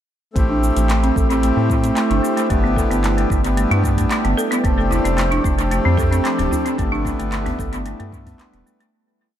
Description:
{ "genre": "organic downtempo", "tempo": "112 BPM", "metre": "4/4", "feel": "straight", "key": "A minor", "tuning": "A4 = 443 Hz", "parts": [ { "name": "hand-pumped harmonium", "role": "accompaniment", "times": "0.3-8.9 s", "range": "A3 to G4", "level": "-23 LUFS", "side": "left 1 dB", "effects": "sidechain pumping, dub echo" }, { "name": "ethereal airy pad", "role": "sustained chords", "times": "1.5-8.9 s", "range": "F3 to D5", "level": "-27 LUFS", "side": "right 1 dB", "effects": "ensemble chorus, built-in reverb, sidechain pumping" }, { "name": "folk marimba with medium hard mallets", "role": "arpeggios", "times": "0.4-8.9 s", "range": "A3 to A4", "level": "-22 LUFS", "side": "right 1 dB", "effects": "low-pass filter, dub echo" }, { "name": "round analog bass", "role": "bass", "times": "0.4-8.6 s", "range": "D1 to A2", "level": "-20 LUFS", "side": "equal", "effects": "sidechain pumping" }, { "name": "afro-pop drum kit", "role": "drums", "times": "0.4-8.9 s", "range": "handclaps, hi-hat, shaker", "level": "-29 LUFS", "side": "right 1 dB", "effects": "dub echo" }, { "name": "electronic kick drum", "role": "drums", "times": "0.4-8.4 s", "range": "none", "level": "-22 LUFS", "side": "equal", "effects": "none" }, { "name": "djembe", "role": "percussion", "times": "4.9-8.6 s", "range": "none", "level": "-30 LUFS", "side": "left 1 dB", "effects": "none" } ], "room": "light reverb, small room reverb", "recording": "echo-heavy mix", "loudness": "-16 LUFS", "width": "side -10 dB against mid", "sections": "0.4-8.9 groove", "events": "filter sweep on marimba 0.4-8.9; fade-out 6.1-8.9", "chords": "0.4 Am7; 2.5 Em7/G; 4.6 F69; 6.8 G69", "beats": "| 0.36 0.89 1.43 1.97 | 2.50 3.04 3.57 4.11 | 4.64 5.18 5.71 6.25 | 6.79 7.32 7.86 8.39" }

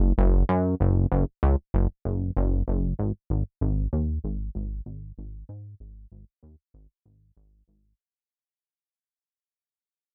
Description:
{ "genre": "synthwave", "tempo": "96 BPM", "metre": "4/4", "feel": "straight", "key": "unclear", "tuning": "A4 = 440 Hz", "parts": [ { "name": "chorused synth bass", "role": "bass", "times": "0.0-7.9 s", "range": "F#1 to G#2", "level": "-26 LUFS", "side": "equal", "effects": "none" } ], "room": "little or no reverb", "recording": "bright 1980s-style digital production", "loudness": "-26 LUFS", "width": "mono", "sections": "0.0-8.0 A section", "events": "fade-out 0.0-8.0; filter sweep on analog synth bass 0.0-8.0", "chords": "none", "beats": "| 0.49 1.11 1.74 2.37 | 2.99 3.62 4.24 4.87 | 5.49 6.12 6.74 7.37" }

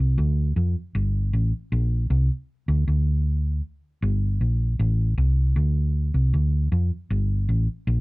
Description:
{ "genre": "reggae", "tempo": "78 BPM", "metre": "4/4", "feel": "straight", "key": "unclear", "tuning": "A4 = 440 Hz", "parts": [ { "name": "hollow-body short-scale fingered electric bass", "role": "solo", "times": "0.0-8.0 s", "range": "G1 to F2", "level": "-20 LUFS", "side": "equal", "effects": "none" } ], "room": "light reverb", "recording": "dry, close 1970s-style studio recording", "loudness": "-21 LUFS", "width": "side -23 dB against mid", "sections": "0.0-5.6 A section; 5.6-8.0 B section", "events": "none", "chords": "none", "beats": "0.17 0.94 1.71 | 2.48 3.25 4.02 4.79 | 5.56 6.33 7.09 7.86" }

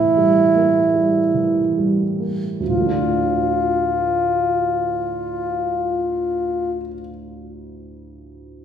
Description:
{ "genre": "classical, romantic duo for alto saxophone and grand piano", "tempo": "38 BPM", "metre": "4/4", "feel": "rubato", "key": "D minor", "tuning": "A4 = 440 Hz", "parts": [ { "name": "clear alto saxophone", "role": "melody", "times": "0.0-6.8 s", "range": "E4 to F4", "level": "-18 LUFS", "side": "right 1 dB", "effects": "none" }, { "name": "warm baby grand piano", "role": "accompaniment", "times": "0.0-8.6 s", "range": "D2 to F4", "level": "-23 LUFS", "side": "right 2 dB", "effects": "none" } ], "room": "wet recital hall reverb, RT60 1.6 s", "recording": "recorded in a church or concert hall", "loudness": "-17 LUFS", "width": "side -8 dB against mid", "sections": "0.0-2.6 A section; 2.6-8.6 B section", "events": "slowing down 0.0-2.6", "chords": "0.0 A5; 2.6 Dm", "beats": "0.94 | 2.60 4.15 5.74 7.30" }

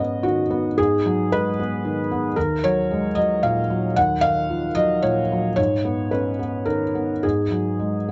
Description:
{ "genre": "neoclassical minimalist piano", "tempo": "112 BPM", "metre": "3/4", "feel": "rubato", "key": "unclear", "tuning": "A4 = 436 Hz", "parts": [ { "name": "felt-muted upright piano", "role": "solo", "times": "0.0-8.1 s", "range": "Eb2 to Gb5", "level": "-22 LUFS", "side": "equal", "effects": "none" } ], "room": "moderate booth ambience, RT60 0.2 s", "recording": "dark, warm production, nothing above 7.9 kHz", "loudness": "-22 LUFS", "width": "mono", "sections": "0.0-8.1 A section", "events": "none", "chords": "0.0 Abm7; 2.4 Ebm7; 5.6 Abm7", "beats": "0.24 | 0.78 1.31 1.83 | 2.36 2.89 3.43 | 3.96 4.49 5.03 | 5.58 6.12 6.67 | 7.23 7.80" }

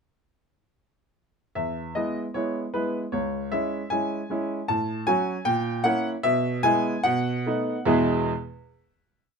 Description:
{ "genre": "classical-period piano sonatina", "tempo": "76 BPM", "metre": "2/4", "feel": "rubato", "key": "E major", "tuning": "A4 = 440 Hz", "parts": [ { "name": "bright baby grand piano", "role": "solo", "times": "1.6-8.3 s", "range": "C#2 to A5", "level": "-23 LUFS", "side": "equal", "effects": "none" } ], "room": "light reverb", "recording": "close, detailed microphones", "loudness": "-23 LUFS", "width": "side -5 dB against mid", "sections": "1.6-7.9 A section; 7.9-9.4 final chord", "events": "none", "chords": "1.6 E; 3.1 C#m; 4.7 F#m/A; 5.5 A#dim7; 6.2 E/B; 7.0 B7; 7.9 E", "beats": "| 1.56 2.35 | 3.13 3.91 | 4.69 5.46 | 6.24 7.05 | 7.87" }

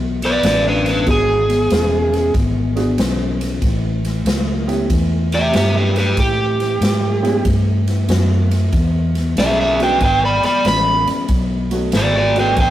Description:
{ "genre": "electric blues shuffle", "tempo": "94 BPM", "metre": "4/4", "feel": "swing 67% on 8ths", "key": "E mixolydian", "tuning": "A4 = 440 Hz", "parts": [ { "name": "electric guitar through a small old amp", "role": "riff", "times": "0.0-12.7 s", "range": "E2 to G#3", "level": "-24 LUFS", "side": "left 4 dB", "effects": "none" }, { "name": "vintage muted fingered electric bass", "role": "bass", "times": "0.0-12.7 s", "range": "E1 to A2", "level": "-19 LUFS", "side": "equal", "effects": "none" }, { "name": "crunchy overdriven guitar", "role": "melody", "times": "0.2-12.7 s", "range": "D4 to B5", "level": "-16 LUFS", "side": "right 2 dB", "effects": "spring reverb" }, { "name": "swinging big-band drum kit", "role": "drums", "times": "0.2-12.7 s", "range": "kick drum, ride cymbal, snare drum", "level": "-21 LUFS", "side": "equal", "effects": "none" }, { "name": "clear upright piano", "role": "accompaniment", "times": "1.1-12.5 s", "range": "G#3 to G#4", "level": "-23 LUFS", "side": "right 2 dB", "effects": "none" } ], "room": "moderate stone room reverb, RT60 1.0 s", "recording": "rough rehearsal-room recording, warm saturation", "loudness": "-14 LUFS", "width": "side -13 dB against mid", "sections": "0.0-12.7 A section", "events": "none", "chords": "0.0 E7; 3.6 A7; 8.7 E; 11.3 B7", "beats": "0.42 | 1.06 1.70 2.34 2.98 | 3.62 4.25 4.89 5.53 | 6.17 6.81 7.45 8.09 | 8.73 9.37 10.01 10.65 | 11.29 11.93 12.57" }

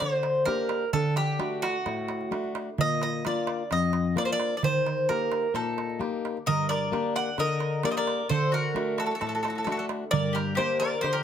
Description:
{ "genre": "greek folk, Greek bouzouki band", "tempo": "130 BPM", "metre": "4/4", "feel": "straight", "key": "D phrygian dominant", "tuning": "A4 = 440 Hz", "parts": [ { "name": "Greek bouzouki", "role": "melody", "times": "0.0-11.2 s", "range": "F#4 to F#5", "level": "-28 LUFS", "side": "right 1 dB", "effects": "none" }, { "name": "fingerpicked plugged-in swing-style acoustic guitar", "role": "accompaniment", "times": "0.0-11.2 s", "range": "F2 to G4", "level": "-30 LUFS", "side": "left 4 dB", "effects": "none" }, { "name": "darbuka", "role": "percussion", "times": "0.0-11.1 s", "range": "none", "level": "-32 LUFS", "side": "right 7 dB", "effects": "none" }, { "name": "mandolin", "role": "second line", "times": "5.5-11.2 s", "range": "Eb4 to D5", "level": "-32 LUFS", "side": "left 3 dB", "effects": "none" } ], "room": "moderate studio reverb, RT60 0.8 s", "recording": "none", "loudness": "-25 LUFS", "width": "side -9 dB against mid", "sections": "0.0-11.2 A section", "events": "none", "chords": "0.0 Gm; 0.9 D; 2.8 Bb; 4.6 Eb; 6.5 Gm; 8.3 D; 10.1 Gm", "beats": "0.46 | 0.92 1.39 1.85 2.32 | 2.78 3.24 3.71 4.17 | 4.63 5.09 5.55 6.01 | 6.47 6.93 7.39 7.84 | 8.30 8.76 9.21 9.67 | 10.13 10.58 11.03" }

